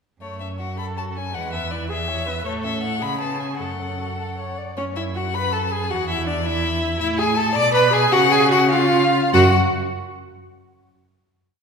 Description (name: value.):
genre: quick classical-period movement for string quartet.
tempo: 94-110 BPM (dotted quarters).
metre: 6/8.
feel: rubato.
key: F# minor.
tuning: A4 = 442 Hz.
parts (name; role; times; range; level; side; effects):
clear violin; melody; 0.2-9.6 s; C#5 to D6; -23 LUFS; left 4 dB; none.
warm violin; second line; 0.2-9.6 s; G#3 to D5; -25 LUFS; equal; none.
rich cello; bass; 0.2-9.6 s; E2 to C#3; -24 LUFS; right 1 dB; none.
rich viola; accompaniment; 0.8-9.6 s; C#4 to D5; -24 LUFS; right 3 dB; none.
room: wet scoring stage reverb, RT60 1.6 s.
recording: minimal, uncompressed stereo recording.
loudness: -18 LUFS.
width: side -5 dB against mid.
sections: 0.2-4.8 A section; 4.8-9.3 A section; 9.3-10.5 final note.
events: none.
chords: 0.2 F#m; 1.3 E; 2.5 A; 3.0 C#5; 3.6 F#m; 4.8 F#m11; 5.9 Dadd9/E; 7.0 Eadd11/A; 7.6 Bm6; 8.1 C#sus4; 9.3 N.C..